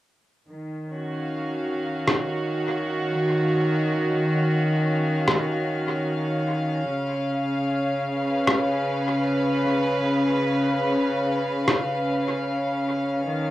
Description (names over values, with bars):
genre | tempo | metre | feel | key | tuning
ambient dub | 75 BPM | 4/4 | swing 54% on 16ths | Eb minor | A4 = 440 Hz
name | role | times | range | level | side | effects
rich chamber string section | sustained chords | 0.5-13.5 s | Db3 to F5 | -22 LUFS | equal | cassette tape
electronic rim click | drums | 2.1-11.8 s | none | -24 LUFS | equal | cassette tape, dub echo
room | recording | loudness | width
moderate studio reverb, RT60 0.5 s | home recording on cassette | -22 LUFS | side -15 dB against mid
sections
0.5-13.5 A section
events
none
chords
0.5 Ebm9; 6.9 Db7